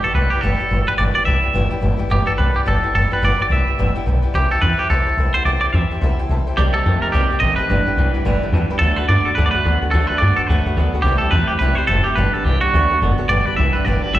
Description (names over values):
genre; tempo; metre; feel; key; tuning
rockabilly; 215 BPM; 4/4; swing 60% on 8ths; G major; A4 = 440 Hz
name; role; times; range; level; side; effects
twangy electric guitar; melody; 0.0-14.2 s; F#4 to E5; -19 LUFS; right 1 dB; slapback echo, tape echo
picked old ladder-braced acoustic guitar; accompaniment; 0.0-14.2 s; G2 to A4; -29 LUFS; left 1 dB; slapback echo
tack piano; accompaniment; 0.0-14.2 s; A4 to B5; -30 LUFS; left 2 dB; slapback echo
upright bass; bass; 0.0-14.2 s; F#1 to G2; -18 LUFS; equal; none
twangy electric guitar; riff; 6.6-14.2 s; G2 to B3; -25 LUFS; right 3 dB; wide subtle chorus, slapback echo
room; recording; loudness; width
small room ambience; live gig heard through the venue's PA, recital hall reverb; -15 LUFS; side -14 dB against mid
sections
0.0-13.3 A section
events
honky-tonk piano fill 8.0-8.8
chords
0.0 G6; 4.3 C6; 6.6 Cm7; 7.7 G6; 8.8 D6; 11.1 C6; 12.2 G6; 12.7 D6; 13.3 G6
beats
0.15 0.43 0.71 | 0.99 1.27 1.55 1.83 | 2.11 2.38 2.66 2.94 | 3.22 3.50 3.78 4.06 | 4.34 4.62 4.90 5.18 | 5.46 5.74 6.01 6.29 | 6.57 6.85 7.13 7.41 | 7.69 7.97 8.25 8.53 | 8.81 9.09 9.37 9.65 | 9.93 10.21 10.49 10.77 | 11.05 11.33 11.62 11.90 | 12.18 12.46 12.74 13.02 | 13.30 13.58 13.86 14.15